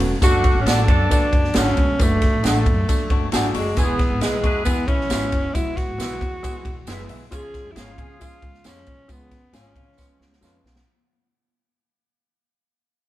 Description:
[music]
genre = uptempo 1960s-style soul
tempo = 135 BPM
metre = 4/4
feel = straight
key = unclear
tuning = A4 = 440 Hz
[part]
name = warm upright piano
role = accompaniment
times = 0.0-10.8 s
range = D3 to G#5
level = -29 LUFS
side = left 1 dB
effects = tube saturation
[part]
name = upright bass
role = bass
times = 0.0-10.8 s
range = E1 to C#3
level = -25 LUFS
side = equal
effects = none
[part]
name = swinging big-band drum kit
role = drums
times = 0.0-10.9 s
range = hi-hat, kick drum, ride cymbal, snare drum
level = -21 LUFS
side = equal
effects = none
[part]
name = warm alto saxophone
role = melody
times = 0.2-10.4 s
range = G#3 to G#4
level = -24 LUFS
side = right 1 dB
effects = none
[part]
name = mellow horn section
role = second line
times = 0.2-8.4 s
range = G#3 to B4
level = -28 LUFS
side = right 2 dB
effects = none
[part]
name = tambourine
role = percussion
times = 0.2-10.5 s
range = none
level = -34 LUFS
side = right 7 dB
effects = none
[part]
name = electric guitar through a small old amp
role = stabs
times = 0.7-10.5 s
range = D4 to F#5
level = -27 LUFS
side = right 2 dB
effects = warbly pitch drift
[part]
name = semi-hollow electric guitar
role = riff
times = 3.1-5.5, 9.5-10.6 s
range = C#4 to G#4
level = -32 LUFS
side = left 8 dB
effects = none
[sound]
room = moderate stone room reverb, RT60 0.9 s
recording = band playing live in one room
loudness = -17 LUFS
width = side -15 dB against mid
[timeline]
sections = 0.0-10.9 A section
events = fade-out 0.0-10.9; upright piano fill 6.7-7.3; drum fill 10.0-10.9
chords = 0.2 D; 3.8 E; 7.3 C#

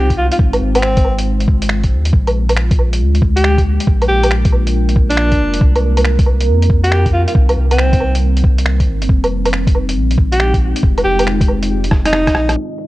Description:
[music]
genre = future garage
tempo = 138 BPM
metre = 4/4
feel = swing 66% on 16ths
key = unclear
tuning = A4 = 440 Hz
[part]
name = breathy alto saxophone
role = melody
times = 0.0-12.6 s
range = C4 to G4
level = -18 LUFS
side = equal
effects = vintage 12-bit sampler grit, analog delay
[part]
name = deep dark ambient pad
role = sustained chords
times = 0.0-12.9 s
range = G3 to C5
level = -22 LUFS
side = equal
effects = chorus, built-in reverb, sidechain pumping
[part]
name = warm sub bass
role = bass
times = 0.0-12.6 s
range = F1 to F2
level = -15 LUFS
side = equal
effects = tube saturation, sidechain pumping
[part]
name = electronic kick drum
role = drums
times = 0.1-12.3 s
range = none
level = -13 LUFS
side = equal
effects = vintage 12-bit sampler grit
[part]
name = lo-fi sampler-style drum kit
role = drums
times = 0.1-12.9 s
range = finger snaps, hi-hat, rim click, woodblock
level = -19 LUFS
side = equal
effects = vintage 12-bit sampler grit
[sound]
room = little or no reverb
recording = cassette tape, low-pass filter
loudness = -11 LUFS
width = side -17 dB against mid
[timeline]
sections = 0.0-12.6 A section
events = drum fill 11.9-12.6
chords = 0.0 Ab6; 2.1 Bb7; 5.6 Cm7; 9.1 Fm7

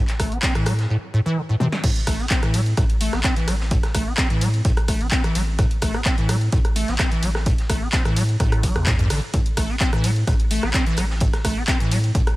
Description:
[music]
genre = acid house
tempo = 128 BPM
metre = 4/4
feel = straight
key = A minor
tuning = A4 = 436 Hz
[part]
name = acid bass, square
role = riff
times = 0.0-12.2 s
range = G2 to C4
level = -25 LUFS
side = equal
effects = tube saturation, ensemble chorus, sidechain pumping
[part]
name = saturated sub bass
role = bass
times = 0.0-12.4 s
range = A1 to A2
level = -23 LUFS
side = equal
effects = sidechain pumping
[part]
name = punchy analog drum machine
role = drums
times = 0.1-12.4 s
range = crash cymbal, handclaps, hi-hat, ride cymbal, rim click, snare drum, toms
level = -26 LUFS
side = equal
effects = none
[part]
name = vintage drum kit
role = drums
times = 0.1-12.4 s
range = hi-hat, snare drum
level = -38 LUFS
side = equal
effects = none
[part]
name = electronic kick drum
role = drums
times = 0.2-12.2 s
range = none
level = -21 LUFS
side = equal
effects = none
[sound]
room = little or no reverb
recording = none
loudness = -18 LUFS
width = side -18 dB against mid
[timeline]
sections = 0.0-1.8 A section; 1.8-12.4 B section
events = drum fill 1.6; drop 1.8-12.4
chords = 0.0 Am

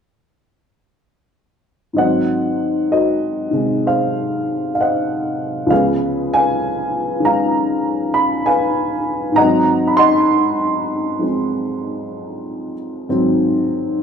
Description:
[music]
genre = solo jazz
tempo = 65 BPM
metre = 4/4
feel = swing 67% on 8ths, rubato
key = Ab mixolydian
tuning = A4 = 440 Hz
[part]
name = dark upright piano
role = solo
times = 1.9-14.0 s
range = Db2 to C6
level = -15 LUFS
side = equal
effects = none
[sound]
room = moderate large studio reverb, RT60 0.9 s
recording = band playing live in one room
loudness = -15 LUFS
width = side -7 dB against mid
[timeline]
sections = 2.0-14.0 A section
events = none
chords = 2.0 Ab7; 5.7 Db7; 9.4 Ab7

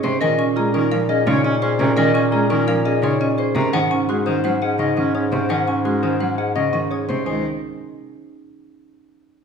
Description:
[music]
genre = classical, minimalist pattern music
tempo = 170 BPM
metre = 5/4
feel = straight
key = Db major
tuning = A4 = 440 Hz
[part]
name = mellow electric guitar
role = melody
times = 0.0-7.4 s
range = Ab4 to Gb5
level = -24 LUFS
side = left 5 dB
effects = none
[part]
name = rich cello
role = accompaniment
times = 0.0-7.4 s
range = C3 to Ab3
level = -25 LUFS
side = equal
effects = none
[part]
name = marimba with medium hard mallets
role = arpeggios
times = 0.0-7.4 s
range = Db4 to C5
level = -23 LUFS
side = right 6 dB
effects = none
[part]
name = xylophone with rubber mallets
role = arpeggios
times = 0.0-7.4 s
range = Eb5 to Eb6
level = -29 LUFS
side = left 4 dB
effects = none
[part]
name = warm bass clarinet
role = bass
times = 0.0-7.4 s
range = Db2 to Bb2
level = -24 LUFS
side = left 4 dB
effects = none
[part]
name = clear clarinet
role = second line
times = 0.2-7.0 s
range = Db4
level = -26 LUFS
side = right 4 dB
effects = none
[sound]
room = wet recital hall reverb, RT60 1.5 s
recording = recorded in a church or concert hall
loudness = -17 LUFS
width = side -6 dB against mid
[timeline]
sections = 0.0-7.3 A section; 7.3-9.0 B section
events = none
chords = 0.2 Bbm9; 3.7 Ab7sus4; 7.3 Dbsus2

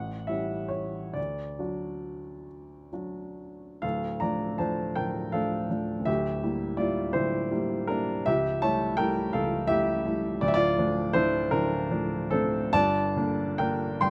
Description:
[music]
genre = classical, romantic character piece for solo piano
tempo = 43-57 BPM (dotted quarters)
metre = 6/8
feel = rubato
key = D major, D minor from 3.8 s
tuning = A4 = 435 Hz
[part]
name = warm baby grand piano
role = solo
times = 0.0-14.1 s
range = C#1 to C6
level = -28 LUFS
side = equal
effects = none
[sound]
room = light reverb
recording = close, detailed microphones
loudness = -28 LUFS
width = mono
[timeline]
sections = 0.0-3.8 A section; 3.8-14.1 B section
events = none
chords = 0.0 A7; 1.2 D; 3.8 Dm; 6.1 Em7b5/D; 8.3 A7/C#; 10.4 Dm; 12.7 Gm

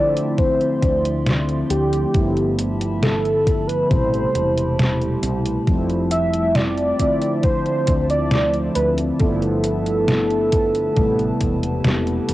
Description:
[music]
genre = vaporwave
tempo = 68 BPM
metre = 4/4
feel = straight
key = unclear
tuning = A4 = 437 Hz
[part]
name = warm velvety synth lead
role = melody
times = 0.0-12.2 s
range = G4 to E5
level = -22 LUFS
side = equal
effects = chorus, cassette tape, tape echo
[part]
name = mellow synth brass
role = accompaniment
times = 0.0-12.3 s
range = B2 to E4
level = -22 LUFS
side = equal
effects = wide subtle chorus, cassette tape
[part]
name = warbly tape-like pad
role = sustained chords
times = 0.0-12.3 s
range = F3 to C6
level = -33 LUFS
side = equal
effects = chorus, built-in reverb, vintage 12-bit sampler grit, cassette tape
[part]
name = detuned 8-bit digital drum machine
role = drums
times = 0.2-12.3 s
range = hi-hat, snare drum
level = -22 LUFS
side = equal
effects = overdrive, vintage 12-bit sampler grit
[part]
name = electronic kick drum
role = drums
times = 0.4-11.6 s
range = none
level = -20 LUFS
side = equal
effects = overdrive, vintage 12-bit sampler grit
[part]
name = woody fretless electric bass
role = bass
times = 0.8-12.3 s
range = E1 to D2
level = -25 LUFS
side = equal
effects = wide subtle chorus
[sound]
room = digital ambience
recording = home recording on cassette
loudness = -17 LUFS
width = side -16 dB against mid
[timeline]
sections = 0.0-12.3 A section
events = none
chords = 0.0 Dm9; 2.1 G13; 3.9 Am9; 5.7 Fmaj9; 7.0 Dm9; 9.2 G13; 11.0 Am9

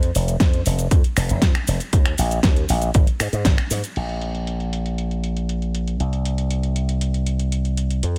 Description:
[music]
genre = nu-disco, nu disco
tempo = 118 BPM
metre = 4/4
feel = straight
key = unclear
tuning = A4 = 437 Hz
[part]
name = slap bass with an envelope filter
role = bass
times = 0.0-8.2 s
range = F1 to Ab2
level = -24 LUFS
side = equal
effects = none
[part]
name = pop drum kit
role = drums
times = 0.0-8.2 s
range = crash cymbal, finger snaps, hi-hat, shaker, snare drum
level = -28 LUFS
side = equal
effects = overdrive, low-pass filter on hats, low-pass filter on perc, low-pass filter on snare, low-pass filter on cymbals, low-pass filter on room
[part]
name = electronic kick drum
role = drums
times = 0.4-3.6 s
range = none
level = -19 LUFS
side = equal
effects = overdrive
[sound]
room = little or no reverb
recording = none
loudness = -21 LUFS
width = mono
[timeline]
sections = 0.0-4.0 A section; 4.0-8.2 B section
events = none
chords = none

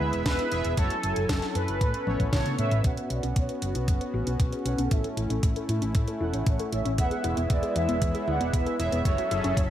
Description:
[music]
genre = italo disco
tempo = 116 BPM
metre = 4/4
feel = straight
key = unclear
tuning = A4 = 440 Hz
[part]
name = mellow synth brass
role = melody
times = 0.0-9.7 s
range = C#4 to F#5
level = -31 LUFS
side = right 1 dB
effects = chorus, digital delay
[part]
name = warm analog pad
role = sustained chords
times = 0.0-9.7 s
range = F#3 to G#5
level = -33 LUFS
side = left 1 dB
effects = chorus
[part]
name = analog synth brass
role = stabs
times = 0.0-9.2 s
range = A3 to F#5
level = -35 LUFS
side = right 4 dB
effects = chorus, ping-pong delay
[part]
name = hollow-body short-scale fingered electric bass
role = bass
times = 0.0-9.7 s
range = E1 to A2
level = -30 LUFS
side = equal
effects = none
[part]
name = house drum kit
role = drums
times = 0.1-9.7 s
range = hi-hat, snare drum, toms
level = -34 LUFS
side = equal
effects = overdrive, high-pass filter on hats, high-pass filter on snare, high-pass filter on toms, high-pass filter on room, gated reverb
[part]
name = electronic kick drum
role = drums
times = 0.3-9.7 s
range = none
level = -26 LUFS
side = equal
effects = none
[part]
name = warbly dusty pluck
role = arpeggios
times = 3.0-9.5 s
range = B3 to B4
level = -35 LUFS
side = left 2 dB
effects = chorus, ping-pong delay
[sound]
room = light reverb, digital ambience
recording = vinyl crackle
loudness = -24 LUFS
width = side -11 dB against mid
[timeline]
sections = 0.0-2.8 A section; 2.8-9.7 B section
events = drum fill 2.1-2.8, 2.8-9.7; filter sweep on synth arpeggio sound 2.8-9.7; filter sweep on analog polysynth 2.8-9.7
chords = 0.0 E; 0.8 F#m7; 1.8 Aadd9; 2.8 Bsus2; 4.9 A; 7.0 E; 9.1 F#m7

